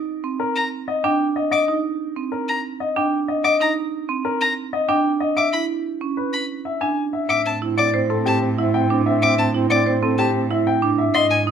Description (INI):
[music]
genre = classical, minimalist pattern music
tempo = 187 BPM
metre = 6/4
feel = straight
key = unclear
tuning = A4 = 440 Hz
[part]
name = marimba with medium hard mallets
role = arpeggios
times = 0.2-11.5 s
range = C4 to C5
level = -22 LUFS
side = right 7 dB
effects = none
[part]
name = warm concert grand piano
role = melody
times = 0.4-11.4 s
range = G4 to G#5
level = -22 LUFS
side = left 6 dB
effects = none
[part]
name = rich violin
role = arpeggios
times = 0.6-11.4 s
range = Ab5 to D6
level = -22 LUFS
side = left 2 dB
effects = none
[part]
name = warm French horn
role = second line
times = 7.3-11.5 s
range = C4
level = -27 LUFS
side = right 2 dB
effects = none
[part]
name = rich cello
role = bass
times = 7.3-11.5 s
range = Ab2 to A2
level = -24 LUFS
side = right 2 dB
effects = none
[sound]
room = light reverb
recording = none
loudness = -18 LUFS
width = side -8 dB against mid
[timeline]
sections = 0.0-7.3 A section; 7.3-11.5 B section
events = none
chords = 0.0 Cm7; 5.4 E7(no3); 7.3 Am7